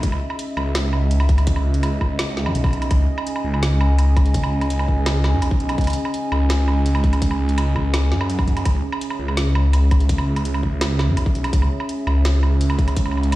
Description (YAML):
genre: half-time drum and bass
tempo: 167 BPM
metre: 4/4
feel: half-time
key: C# minor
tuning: A4 = 440 Hz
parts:
  - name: dark analog pad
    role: sustained chords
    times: 0.0-13.4 s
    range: C#4 to G#5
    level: -26 LUFS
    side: right 2 dB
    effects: wide subtle chorus, sidechain pumping
  - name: phased detuned saw bass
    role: bass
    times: 0.0-13.4 s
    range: B1 to F#2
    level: -18 LUFS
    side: equal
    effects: phaser
  - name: drum and bass drum kit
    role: drums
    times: 0.0-13.4 s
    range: hi-hat, snare drum, woodblock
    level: -27 LUFS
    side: right 1 dB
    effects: none
  - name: electronic kick drum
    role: drums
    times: 0.0-13.0 s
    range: none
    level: -20 LUFS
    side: equal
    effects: none
room: little or no reverb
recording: played on a big sound system in a bare room, stone room reverb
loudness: -17 LUFS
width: side -17 dB against mid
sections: 0.0-13.4 A section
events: none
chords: 0.0 C#m